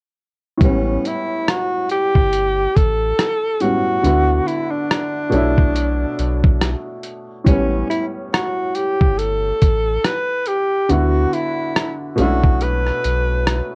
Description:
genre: lo-fi hip hop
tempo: 70 BPM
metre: 4/4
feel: swing 57% on 16ths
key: unclear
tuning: A4 = 440 Hz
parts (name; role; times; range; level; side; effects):
- mellow tenor saxophone; melody; 0.6-13.8 s; C#4 to B4; -22 LUFS; equal; none
- warm upright piano; accompaniment; 0.6-13.8 s; A2 to C#5; -25 LUFS; equal; none
- soft dub sub bass; bass; 0.6-13.6 s; G1 to D2; -23 LUFS; equal; none
- dusty soul sampler-style drum kit; drums; 0.6-13.7 s; hi-hat, kick drum, rim click; -19 LUFS; equal; none
room: moderate small room reverb, RT60 0.5 s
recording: worn, warbling old tape, cassette tape, warbly pitch drift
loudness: -18 LUFS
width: mono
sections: 0.6-13.8 A section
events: kick muted 12.6-13.8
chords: 0.6 A9; 4.0 D69; 5.3 Bm11; 7.5 A9; 10.9 D69; 12.2 Bm11

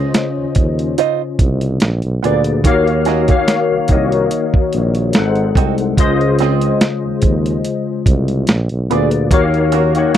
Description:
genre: R&B, neo-soul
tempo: 72 BPM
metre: 4/4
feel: swing 54% on 16ths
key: Db major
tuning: A4 = 442 Hz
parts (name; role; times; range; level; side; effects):
- hollow-body jazz guitar; second line; 0.0-10.1 s; Cb4 to Eb5; -18 LUFS; right 19 dB; wah
- barky tine electric piano; accompaniment; 0.0-10.2 s; Bb2 to Gb5; -16 LUFS; left 4 dB; ensemble chorus
- breathy tuba; bass; 0.0-10.1 s; Ab1 to Eb2; -18 LUFS; right 1 dB; none
- dusty soul sampler-style drum kit; drums; 0.1-10.2 s; hi-hat, kick drum, snare drum; -14 LUFS; right 1 dB; none
room: little or no reverb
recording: dry, close 1970s-style studio recording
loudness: -13 LUFS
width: side -10 dB against mid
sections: 0.0-10.2 A section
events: none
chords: 0.0 Dbmaj9; 1.8 Bb7b9; 2.6 Ebm7; 5.1 Ab7b9; 6.0 Dbmaj9; 8.5 Bb7b9; 9.3 Ebm7

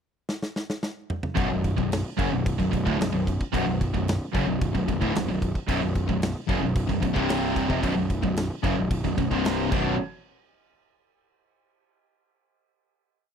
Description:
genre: heavy metal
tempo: 111 BPM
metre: 4/4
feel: straight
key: unclear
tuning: A4 = 439 Hz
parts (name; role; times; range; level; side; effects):
- big rock drum kit; drums; 0.3-9.8 s; crash cymbal, kick drum, snare drum, toms; -30 LUFS; equal; none
- high-gain distorted guitar; riff; 1.4-9.9 s; B1 to C#3; -29 LUFS; right 9 dB; distortion
- raw garage guitar; riff; 1.4-9.9 s; B1 to D4; -31 LUFS; left 1 dB; overdrive
- sludgy distorted guitar; riff; 1.4-9.9 s; B1 to C#3; -29 LUFS; left 9 dB; overdrive
- fuzz picked electric bass; bass; 1.4-10.0 s; B0 to F#1; -30 LUFS; equal; overdrive
room: small room ambience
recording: dry, close 1970s-style studio recording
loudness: -23 LUFS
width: side -7 dB against mid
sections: 0.0-1.4 pickup bar; 1.4-10.0 riff; 10.0-12.2 final hit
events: drum fill 0.3-1.4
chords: 0.0 N.C.; 1.4 Bm; 7.2 C5; 7.7 B5; 9.3 C5; 9.9 N.C.

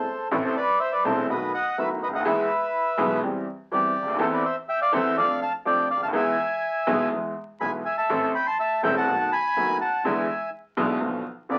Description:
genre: tango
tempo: 124 BPM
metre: 4/4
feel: rubato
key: A minor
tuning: A4 = 439 Hz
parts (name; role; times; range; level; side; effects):
- bandoneon; melody; 0.0-11.6 s; E4 to C6; -26 LUFS; equal; none
- clear upright piano; accompaniment; 0.0-11.6 s; E1 to A4; -28 LUFS; equal; none
- clear double bass; bass; 0.0-11.6 s; E1 to F2; -42 LUFS; equal; none
room: wet studio ambience, RT60 0.5 s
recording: very old 78 rpm record, vinyl crackle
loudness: -25 LUFS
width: mono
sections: 0.3-11.6 A section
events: none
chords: 0.3 Am; 1.3 B7; 2.3 E; 3.2 C/E; 4.2 Amadd9/E; 5.2 Dm/F; 6.1 E; 8.1 Am; 9.1 B7; 10.0 E7; 11.0 Bdim

